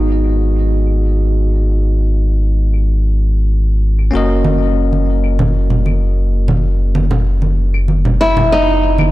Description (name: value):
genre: sunset chillout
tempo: 96 BPM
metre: 4/4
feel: straight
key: G# minor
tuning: A4 = 436 Hz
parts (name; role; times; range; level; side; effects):
- bell-like tine electric piano; accompaniment; 0.0-9.1 s; A#3 to D#5; -21 LUFS; equal; auto-pan, ping-pong delay
- warm sub bass; bass; 0.0-9.1 s; F#1 to G#1; -14 LUFS; equal; none
- claves; drums; 0.2-9.1 s; none; -28 LUFS; left 5 dB; overdrive, low-pass filter on perc, low-pass filter on hats, low-pass filter on snare, low-pass filter on room
- congas; percussion; 4.4-9.1 s; none; -18 LUFS; right 3 dB; none
- flamenco guitar; melody; 8.2-9.1 s; D#4 to E4; -12 LUFS; equal; tape echo
room: light reverb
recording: blown-out, overdriven recording, overdrive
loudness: -12 LUFS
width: side -16 dB against mid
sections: 0.0-9.1 A section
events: none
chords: 0.0 G#m7; 4.1 D#m7/F#